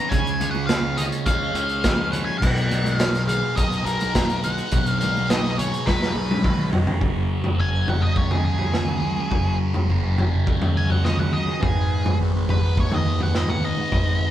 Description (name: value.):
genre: psychedelic rock.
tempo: 104 BPM.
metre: 4/4.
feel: straight.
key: G# dorian.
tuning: A4 = 440 Hz.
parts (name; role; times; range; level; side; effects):
octave-fuzz lead guitar; melody; 0.0-14.3 s; G#4 to A#5; -27 LUFS; equal; distortion.
overdriven combo organ; sustained chords; 0.0-14.3 s; E#3 to A#5; -35 LUFS; right 4 dB; none.
thick fuzz guitar; riff; 0.0-14.3 s; F#2 to A#4; -26 LUFS; equal; distortion, phaser.
fuzz fingered electric bass; bass; 0.1-14.2 s; F#1 to D#2; -29 LUFS; equal; overdrive.
crunchy breakbeat drum kit; drums; 0.1-14.1 s; crash cymbal, hi-hat, kick drum, snare drum, toms; -22 LUFS; equal; none.
congas; percussion; 0.4-14.3 s; none; -34 LUFS; left 1 dB; none.
room: moderate studio reverb, RT60 0.8 s.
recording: band playing live in one room.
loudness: -19 LUFS.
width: side -12 dB against mid.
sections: 0.0-7.0 A section; 7.0-14.3 B section.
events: drum fill 5.9-7.0; lead electric guitar solo 7.0-14.3.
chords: 0.1 C#; 2.4 G#madd9/B; 7.0 F#add9; 11.6 G#m7.